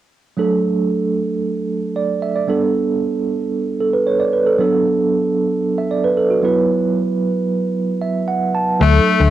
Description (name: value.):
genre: 1980s-style pop.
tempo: 114 BPM.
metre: 4/4.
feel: straight.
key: D major.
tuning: A4 = 439 Hz.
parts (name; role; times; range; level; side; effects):
tine electric piano; accompaniment; 0.4-9.3 s; F#3 to A5; -16 LUFS; right 3 dB; medium tremolo, cassette tape.
edgy tenor saxophone; melody; 8.8-9.3 s; A3; -14 LUFS; left 7 dB; none.
slap-like FM bass; bass; 8.8-9.3 s; D2; -12 LUFS; left 2 dB; none.
room: wet studio reverb, RT60 0.7 s.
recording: home recording on cassette.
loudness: -15 LUFS.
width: side -12 dB against mid.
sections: 0.4-8.8 A section.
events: tine electric piano fill 7.8-8.8.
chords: 0.4 D; 2.5 Gadd9; 4.6 Bm7/F#; 6.4 Esus2.